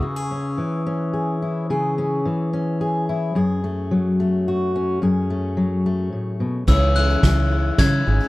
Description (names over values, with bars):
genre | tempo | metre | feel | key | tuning
indie folk with a building arrangement | 108 BPM | 3/4 | straight | unclear | A4 = 440 Hz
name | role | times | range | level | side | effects
fingerpicked steel-string acoustic guitar | accompaniment | 0.0-8.3 s | F#2 to G#4 | -21 LUFS | left 1 dB | none
picked twelve-string acoustic guitar | accompaniment | 0.0, 6.7-8.3 s | C#3 to E4 | -26 LUFS | left 1 dB | lush chorus
glockenspiel with brass mallets | melody | 6.7-8.3 s | E6 to G#6 | -28 LUFS | left 2 dB | none
fingered electric bass | bass | 6.7-8.2 s | G#1 to C#3 | -18 LUFS | equal | none
vintage brush drum kit | drums | 6.7-7.9 s | kick drum, ride cymbal, snare drum | -21 LUFS | equal | none
tambourine | percussion | 6.7-8.3 s | none | -40 LUFS | right 4 dB | none
room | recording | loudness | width
little or no reverb | dark, warm production | -18 LUFS | side -18 dB against mid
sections
0.0-6.7 A section; 6.7-8.3 B section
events
build-up 6.7-8.3; drum fill 6.7-8.3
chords
0.0 C#m; 3.4 F#madd9; 6.7 C#m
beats
| 0.03 0.58 1.14 | 1.69 2.25 2.80 | 3.36 3.92 4.47 | 5.03 5.58 6.13 | 6.69 7.24 7.79